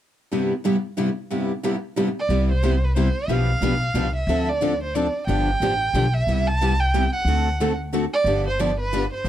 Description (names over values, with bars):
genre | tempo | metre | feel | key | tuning
acoustic string swing (jazz manouche) | 181 BPM | 3/4 | swing 60% on 8ths | C major | A4 = 440 Hz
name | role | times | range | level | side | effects
picked steel-string acoustic guitar | accompaniment | 0.3-9.3 s | G2 to B4 | -26 LUFS | left 6 dB | none
picked steel-string acoustic guitar | accompaniment | 0.3-9.3 s | G2 to B4 | -27 LUFS | right 4 dB | none
warm violin | melody | 2.2-9.3 s | B4 to A5 | -24 LUFS | right 3 dB | none
upright bass | bass | 2.3-9.3 s | G1 to D2 | -23 LUFS | equal | none
room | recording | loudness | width
light reverb | dark, warm production | -20 LUFS | side -11 dB against mid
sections
0.3-2.3 A section; 2.3-9.3 B section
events
none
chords
0.3 Cmaj7/G; 2.3 Cmaj7; 3.3 G7/B; 4.3 Dm7; 5.3 G7; 6.3 Cmaj7; 7.3 D7; 8.3 G7